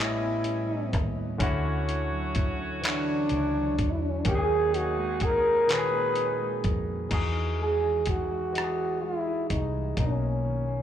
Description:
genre	slow six-eight R&B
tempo	42 BPM (dotted quarters)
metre	6/8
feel	straight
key	unclear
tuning	A4 = 442 Hz
part	growling trombone	melody	0.0-10.8 s	C#4 to B4	-27 LUFS	equal	slapback echo
part	clean electric guitar	second line	0.0-10.8 s	A2 to F#4	-37 LUFS	right 5 dB	phaser
part	barky tine electric piano	accompaniment	0.0-10.8 s	A2 to D#5	-33 LUFS	left 2 dB	slapback echo
part	clear horn section	stabs	0.0-6.6 s	G3 to C#5	-38 LUFS	right 1 dB	slapback echo
part	vintage muted fingered electric bass	bass	0.0-10.8 s	A1 to E#2	-32 LUFS	equal	none
part	dusty soul sampler-style drum kit	drums	0.0-10.2 s	crash cymbal, handclaps, hi-hat, kick drum, rim click	-30 LUFS	equal	none
room	digital ambience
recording	live gig heard through the venue's PA, club reverb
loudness	-25 LUFS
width	side -10 dB against mid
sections	0.0-7.1 A section; 7.1-10.8 B section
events	none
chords	0.0 A9; 1.4 Dmaj9; 4.3 Bmaj13/D#; 7.1 Emaj9; 10.0 Bmaj9

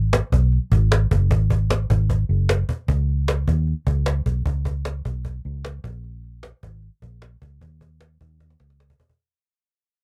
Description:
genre	jangly indie pop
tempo	152 BPM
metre	4/4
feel	straight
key	unclear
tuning	A4 = 444 Hz
part	vintage muted fingered electric bass	bass	0.0-8.9 s	Gb1 to Eb2	-23 LUFS	equal	none
part	cajon	drums	0.1-9.2 s	none	-26 LUFS	equal	none
room	little or no reverb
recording	dry, close 1970s-style studio recording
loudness	-21 LUFS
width	mono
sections	0.0-9.2 A section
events	fade-out 0.0-9.2; drum fill 8.4-9.2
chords	none

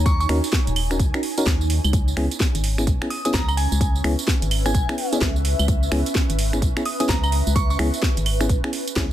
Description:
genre	UK garage, two-step garage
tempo	128 BPM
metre	4/4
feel	swing 62% on 16ths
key	unclear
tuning	A4 = 442 Hz
part	organ-like FM bass	bass	0.0-9.1 s	Eb1 to Eb2	-22 LUFS	equal	sidechain pumping
part	ethereal airy pad	texture	0.0-9.1 s	Db4 to Ab5	-30 LUFS	right 1 dB	ensemble chorus, built-in reverb, phaser, sidechain pumping
part	glassy synth bell	melody	0.1-0.3, 3.1-7.8 s	Ab5 to Eb6	-29 LUFS	right 1 dB	chorus, tape echo
part	electronic kick drum	drums	0.1-9.1 s	none	-22 LUFS	equal	none
part	house drum kit	drums	0.1-9.1 s	claves, finger snaps, hi-hat, snare drum, tambourine	-26 LUFS	right 1 dB	soft clipping on snare
part	FM electric piano	stabs	0.3-9.1 s	Cb4 to Bb4	-26 LUFS	equal	chorus, tape echo
room	little or no reverb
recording	dense, heavily limited modern master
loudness	-18 LUFS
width	side -12 dB against mid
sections	0.0-9.1 A section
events	none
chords	0.0 Ebm7; 1.9 Dbm7

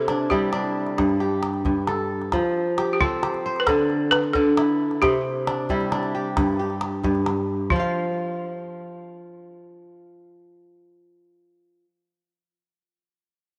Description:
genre	west african traditional, West African string and xylophone music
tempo	89 BPM (dotted quarters)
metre	12/8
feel	straight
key	unclear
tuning	A4 = 439 Hz
part	balafon	melody	0.0-11.8 s	F4 to B4	-26 LUFS	equal	none
part	kora	arpeggios	0.0-11.9 s	G2 to F5	-25 LUFS	equal	none
part	calabash	percussion	0.1-7.9 s	none	-32 LUFS	equal	none
room	wet plate reverb, RT60 3.1 s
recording	none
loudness	-23 LUFS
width	mono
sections	0.0-7.7 A section; 7.7-10.4 B section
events	none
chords	0.0 C; 1.0 G5; 2.3 F; 3.7 D5; 5.0 C; 6.4 G5; 7.7 N.C.

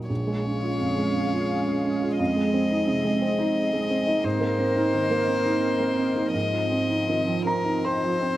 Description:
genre	neoclassical piano and strings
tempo	86 BPM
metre	3/4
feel	uneven beats, rubato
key	Bb minor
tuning	A4 = 444 Hz
part	warm grand piano	accompaniment	0.0-8.4 s	Bb1 to C6	-25 LUFS	right 2 dB	none
part	rich violin	melody	0.1-8.4 s	Bb4 to Eb5	-28 LUFS	left 4 dB	none
part	clear cello	second line	0.1-8.3 s	F3 to Bb3	-32 LUFS	right 2 dB	none
part	hollow soft pad	sustained chords	0.3-8.4 s	C4 to F5	-31 LUFS	equal	ensemble chorus
room	light reverb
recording	recorded outdoors, with no room sound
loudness	-22 LUFS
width	side -14 dB against mid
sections	0.1-8.4 A section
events	none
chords	0.1 Bbm7; 2.2 Fm7; 4.2 Abadd9; 6.3 Fm7/Ab

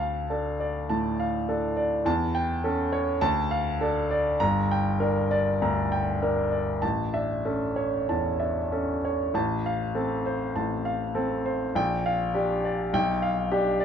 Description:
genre	classical, virtuoso piano study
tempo	94-104 BPM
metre	4/4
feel	rubato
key	F major from 9.3 s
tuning	A4 = 442 Hz
part	clear baby grand piano	solo	0.0-13.8 s	G1 to Bb5	-24 LUFS	equal	none
room	light reverb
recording	dark, warm production, nothing above 7.9 kHz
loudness	-24 LUFS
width	side -8 dB against mid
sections	0.0-13.8 A section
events	none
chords	0.0 Dm; 2.1 A7/E; 3.2 Dm; 4.4 Gm; 6.8 A; 9.3 F/A; 11.7 Gm7/Bb; 12.9 G7/B

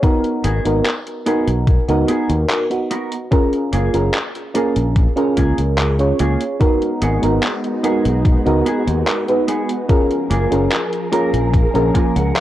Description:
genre	vaporwave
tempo	73 BPM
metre	4/4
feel	straight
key	F# major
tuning	A4 = 440 Hz
part	mellow FM electric piano	accompaniment	0.0-12.4 s	E#3 to C#5	-18 LUFS	right 1 dB	lush chorus, analog delay
part	detuned 8-bit digital drum machine	drums	0.0-12.4 s	handclaps, hi-hat	-24 LUFS	equal	overdrive
part	electronic kick drum	drums	0.0-12.1 s	none	-15 LUFS	equal	overdrive
part	mellow electric guitar	riff	0.4-12.4 s	A#3 to G#5	-26 LUFS	right 2 dB	lush chorus, analog delay
part	modern bright fingered electric bass	bass	0.4-12.3 s	F#1 to D#2	-18 LUFS	equal	none
part	soft string machine	sustained chords	6.6-12.4 s	E#3 to A#4	-24 LUFS	left 1 dB	ensemble chorus
room	light reverb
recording	worn, warbling old tape, cassette tape, warbly pitch drift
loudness	-15 LUFS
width	side -13 dB against mid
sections	0.0-12.4 A section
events	clean electric guitar fill 11.5-12.4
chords	0.0 G#m7; 3.3 F#maj9 (rootless); 6.6 G#m7; 9.9 F#maj9

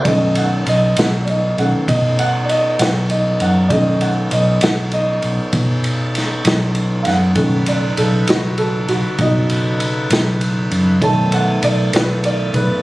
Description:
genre	slow blues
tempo	66 BPM (dotted quarters)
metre	12/8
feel	straight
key	B mixolydian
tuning	A4 = 439 Hz
part	warm upright piano	accompaniment	0.0-12.8 s	D#3 to A5	-18 LUFS	right 1 dB	none
part	tonewheel organ	sustained chords	0.0-12.8 s	C#3 to D5	-25 LUFS	equal	slow rotary speaker, overdrive
part	vintage muted fingered electric bass	bass	0.0-12.7 s	B1 to B2	-18 LUFS	equal	none
part	vintage drum kit	drums	0.1-12.7 s	kick drum, ride cymbal, snare drum	-20 LUFS	equal	none
room	light reverb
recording	recorded on a phone in the room, studio reverb, compression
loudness	-14 LUFS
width	side -18 dB against mid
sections	0.1-12.8 A section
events	upright piano solo 0.1-12.8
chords	0.1 B9

